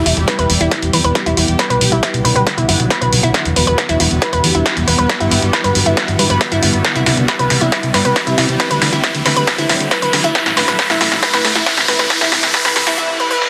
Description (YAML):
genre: uplifting trance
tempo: 137 BPM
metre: 4/4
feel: straight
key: E minor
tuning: A4 = 437 Hz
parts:
  - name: solid FM bass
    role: bass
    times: 0.0-12.9 s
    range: D1 to A2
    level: -21 LUFS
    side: equal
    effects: sidechain pumping
  - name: riser and reverse cymbal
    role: sound effects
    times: 0.0-13.5 s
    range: none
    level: -26 LUFS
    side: equal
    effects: none
  - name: analog pluck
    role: arpeggios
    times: 0.1-13.4 s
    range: E4 to B4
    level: -20 LUFS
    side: equal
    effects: chorus, sidechain pumping, digital delay
  - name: punchy analog drum machine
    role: drums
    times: 0.1-13.5 s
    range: hi-hat, snare drum, toms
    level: -18 LUFS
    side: equal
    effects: high-pass filter on toms, high-pass filter on snare, high-pass filter on hats
  - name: electronic kick drum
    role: drums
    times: 0.3-12.6 s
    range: none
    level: -21 LUFS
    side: equal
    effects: high-pass filter on kick
room: light reverb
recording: dense, heavily limited modern master, high-pass filter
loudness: -14 LUFS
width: mono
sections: 0.0-13.5 A section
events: build-up 0.0-13.5; drum fill 0.0-13.0; filter sweep on synth pluck 0.0-13.5; filter sweep 0.0-13.5; break 13.0-13.5; reverse cymbal 13.0-13.5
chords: 0.0 Em; 1.6 Bm; 3.3 Em; 5.1 Gmaj7; 6.8 C; 8.6 Dadd9; 10.4 Am; 12.1 C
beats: 0.28 0.72 1.15 | 1.59 2.03 2.47 2.91 | 3.34 3.78 4.22 4.66 | 5.10 5.53 5.97 6.41 | 6.85 7.29 7.72 8.16 | 8.60 9.04 9.47 9.91 | 10.35 10.79 11.23 11.66 | 12.10 12.54 12.98 13.42